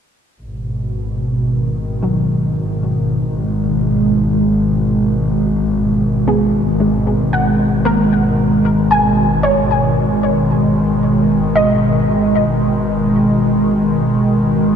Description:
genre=ambient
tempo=57 BPM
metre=4/4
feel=straight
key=G# minor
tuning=A4 = 441 Hz
part: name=airy breathy pad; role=sustained chords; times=0.6-14.8 s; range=B2 to G#3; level=-14 LUFS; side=equal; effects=chorus
part: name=rich studio double bass section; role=bass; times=0.4-14.8 s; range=G#1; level=-21 LUFS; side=left 1 dB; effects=none
part: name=soft round pluck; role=arpeggios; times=2.0-14.7 s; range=F#3 to G#5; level=-20 LUFS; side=equal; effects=ensemble chorus, ping-pong delay
room=wet cathedral reverb, RT60 5.8 s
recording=lossy compression artefacts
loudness=-13 LUFS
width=side -7 dB against mid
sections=0.4-14.8 A section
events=none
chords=0.4 G#m

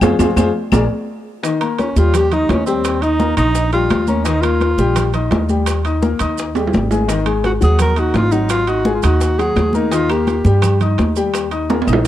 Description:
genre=Afro-Cuban jazz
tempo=170 BPM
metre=4/4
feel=straight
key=unclear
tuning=A4 = 443 Hz
part: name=warm baby grand piano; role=accompaniment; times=0.0-12.1 s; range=Eb3 to Eb6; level=-20 LUFS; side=left 5 dB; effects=none
part: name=upright bass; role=bass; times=0.0-12.1 s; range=Ab1 to G2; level=-18 LUFS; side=right 1 dB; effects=none
part: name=bongos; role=percussion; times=0.0-12.1 s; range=none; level=-26 LUFS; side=left 5 dB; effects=none
part: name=claves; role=percussion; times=0.0-0.8, 10.1-12.1 s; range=none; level=-30 LUFS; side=left 12 dB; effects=none
part: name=congas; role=percussion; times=0.0-12.1 s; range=none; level=-21 LUFS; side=equal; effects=none
part: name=maracas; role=percussion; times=0.0-12.1 s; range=none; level=-33 LUFS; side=right 16 dB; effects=none
part: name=timbales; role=percussion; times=0.0-12.1 s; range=none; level=-23 LUFS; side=right 6 dB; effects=none
part: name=breathy tenor saxophone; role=melody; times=1.8-5.1, 7.5-10.8 s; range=C4 to Bb4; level=-19 LUFS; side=equal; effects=tape echo
room=small room ambience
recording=dry, close 1970s-style studio recording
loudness=-13 LUFS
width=side -12 dB against mid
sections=0.0-1.4 A section; 1.4-12.1 B section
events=grand piano solo 0.0-1.4; band accent 0.0-1.4; drum fill 0.9-1.4, 6.6-7.1, 11.7-12.1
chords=0.0 Fm; 0.7 Bb7; 1.4 Ebadd9; 7.1 Absus2; 9.9 Eb

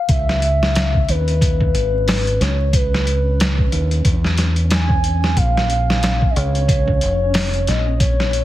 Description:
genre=trip hop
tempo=91 BPM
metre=4/4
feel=swing 58% on 16ths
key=C# dorian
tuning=A4 = 440 Hz
part: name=pure breathy sine lead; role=melody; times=0.0-8.4 s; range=B4 to G#5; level=-22 LUFS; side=equal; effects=wide subtle chorus, tape echo
part: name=deep dub fingered electric bass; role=bass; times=0.1-8.4 s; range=E#1 to E2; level=-18 LUFS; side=equal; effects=none
part: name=trip hop sampler-style drum kit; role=drums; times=0.1-8.4 s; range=hi-hat, kick drum, snare drum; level=-18 LUFS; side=equal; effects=none
part: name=flickering grainy texture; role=texture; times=0.9-8.4 s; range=C#4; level=-32 LUFS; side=right 1 dB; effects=built-in reverb
room=little or no reverb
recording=heavily compressed radio sound, multiband compression, vinyl crackle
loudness=-15 LUFS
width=side -14 dB against mid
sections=0.1-8.4 A section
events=none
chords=0.1 C#madd9; 5.4 A#m

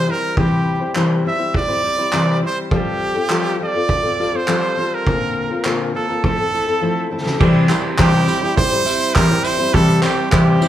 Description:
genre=acoustic pop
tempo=102 BPM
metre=4/4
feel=straight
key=C mixolydian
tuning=A4 = 439 Hz
part: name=brilliant trumpet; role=melody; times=0.0-10.7 s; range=G4 to E5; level=-20 LUFS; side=right 2 dB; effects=none
part: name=fingerpicked steel-string acoustic guitar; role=accompaniment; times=0.0-10.7 s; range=Bb2 to C5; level=-18 LUFS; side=left 2 dB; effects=none
part: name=loose indie drum kit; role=drums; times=0.4-10.7 s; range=crash cymbal, handclaps, kick drum, snare drum, tambourine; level=-20 LUFS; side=right 1 dB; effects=none
part: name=twelve-string electric guitar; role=arpeggios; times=7.4-10.7 s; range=G3 to E4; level=-24 LUFS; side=right 7 dB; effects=none
room=wet large studio reverb, RT60 1.0 s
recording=band playing live in one room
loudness=-15 LUFS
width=side -12 dB against mid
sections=0.0-7.4 A section; 7.4-10.7 B section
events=drum fill 6.8-7.4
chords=0.0 C; 2.7 Fadd9; 5.1 Bbadd9; 6.2 Fmaj7; 7.4 C

